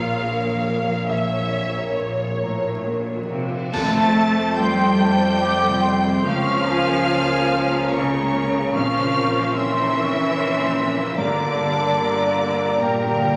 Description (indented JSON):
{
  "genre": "cinematic, emotional film score for orchestra",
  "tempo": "66-74 BPM",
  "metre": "3/4",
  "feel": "rubato",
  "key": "unclear",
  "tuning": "A4 = 439 Hz",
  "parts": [
    { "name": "rich symphonic violin section", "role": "melody", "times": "0.0-13.4 s", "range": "Db5 to A6", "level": "-33 LUFS", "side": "equal", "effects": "none" },
    { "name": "rich studio violin section", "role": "second line", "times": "0.0-13.4 s", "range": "Bb4 to A5", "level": "-28 LUFS", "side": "equal", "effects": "none" },
    { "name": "dark grand piano", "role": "accompaniment", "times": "0.0-13.4 s", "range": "Bb1 to Bb5", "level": "-31 LUFS", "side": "equal", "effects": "none" },
    { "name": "rich symphonic viola section", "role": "accompaniment", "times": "0.0-13.4 s", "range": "G3 to Db5", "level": "-33 LUFS", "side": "equal", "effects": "none" },
    { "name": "concert harp", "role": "arpeggios", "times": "0.0-13.4 s", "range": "G2 to C6", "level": "-32 LUFS", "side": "equal", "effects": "none" },
    { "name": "clear chamber cello section", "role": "bass", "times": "0.0-13.4 s", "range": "A2 to A3", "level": "-26 LUFS", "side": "equal", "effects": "none" },
    { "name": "clear symphonic double bass section", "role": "bass", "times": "0.0-13.4 s", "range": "G1 to F2", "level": "-33 LUFS", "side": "equal", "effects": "none" },
    { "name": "cymbal swell, clash cymbals and concert bass drum", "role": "percussion", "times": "1.1-5.4 s", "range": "none", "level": "-34 LUFS", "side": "equal", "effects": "none" },
    { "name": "warm French horn section", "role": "sustained chords", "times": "3.7-13.4 s", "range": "A3 to D4", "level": "-29 LUFS", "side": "equal", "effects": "none" },
    { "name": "mellow flute section", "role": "second line", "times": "4.6-13.4 s", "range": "G5 to D6", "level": "-27 LUFS", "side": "equal", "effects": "none" }
  ],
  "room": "wet recital hall reverb, RT60 1.5 s",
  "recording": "vinyl crackle",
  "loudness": "-20 LUFS",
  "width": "mono",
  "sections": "0.0-3.7 A section; 3.7-13.4 B section",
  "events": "band accent 3.7-4.6",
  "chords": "0.0 Bbm; 3.7 F; 6.2 Db6; 8.7 Bbmadd9; 11.2 Gm"
}